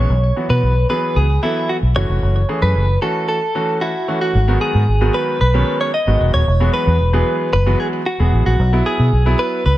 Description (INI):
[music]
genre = pop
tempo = 113 BPM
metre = 4/4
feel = straight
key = unclear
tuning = A4 = 440 Hz
[part]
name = direct-recorded clean electric guitar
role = melody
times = 0.0-9.8 s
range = E4 to D#5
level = -20 LUFS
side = equal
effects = digital delay
[part]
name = clear baby grand piano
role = accompaniment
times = 0.0-9.6 s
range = D#3 to A4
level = -22 LUFS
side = right 1 dB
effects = none
[part]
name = vintage muted fingered electric bass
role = bass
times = 0.0-9.8 s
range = D#1 to B2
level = -14 LUFS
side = equal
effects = none
[sound]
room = little or no reverb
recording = none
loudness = -14 LUFS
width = side -15 dB against mid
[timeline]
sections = 0.0-4.3 A section; 4.3-9.8 B section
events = break 3.3-4.3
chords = 0.1 Bsus4; 2.0 F#m7; 4.3 G#m7; 6.5 Eadd9; 8.6 Bsus4